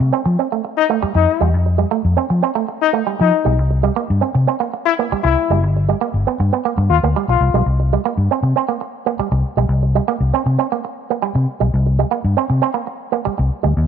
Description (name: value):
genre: funk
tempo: 118 BPM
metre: 4/4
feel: straight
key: unclear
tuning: A4 = 443 Hz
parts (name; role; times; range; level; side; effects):
- vintage muted fingered electric bass; bass; 0.0-13.9 s; F#1 to F3; -15 LUFS; left 1 dB; none
- electric guitar with an envelope filter; riff; 0.1-13.7 s; G3 to C4; -20 LUFS; right 11 dB; none
- warm trombone; second line; 0.8-7.7 s; Eb4 to F4; -18 LUFS; left 11 dB; none
room: light reverb, studio ambience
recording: 1960s-style stereo with parts hard left and right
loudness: -15 LUFS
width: side -8 dB against mid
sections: 0.0-7.7 A section; 7.7-13.9 B section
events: none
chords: 0.0 Fadd9; 3.6 C5; 5.6 G; 7.7 C5